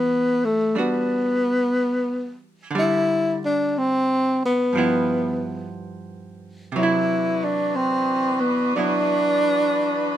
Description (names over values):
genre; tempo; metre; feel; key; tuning
jazz ballad; 60 BPM; 4/4; swing 66% on 8ths; unclear; A4 = 440 Hz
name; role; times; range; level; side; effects
breathy tenor saxophone; melody; 0.0-10.2 s; A3 to E4; -20 LUFS; left 1 dB; none
archtop guitar, miked and amplified; accompaniment; 0.0-10.2 s; G2 to F#4; -27 LUFS; right 3 dB; none
bright saxophone section; sustained chords; 6.8-10.2 s; E3 to B4; -27 LUFS; right 1 dB; none
room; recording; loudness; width
light reverb; minimal, uncompressed stereo recording; -19 LUFS; side -11 dB against mid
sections
0.0-10.2 A section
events
none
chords
0.0 Em9; 2.7 Dsus4; 4.7 G6; 6.7 Cmaj9#11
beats
0.76 1.75 | 2.75 3.74 4.74 5.74 | 6.74 7.74 8.74 9.73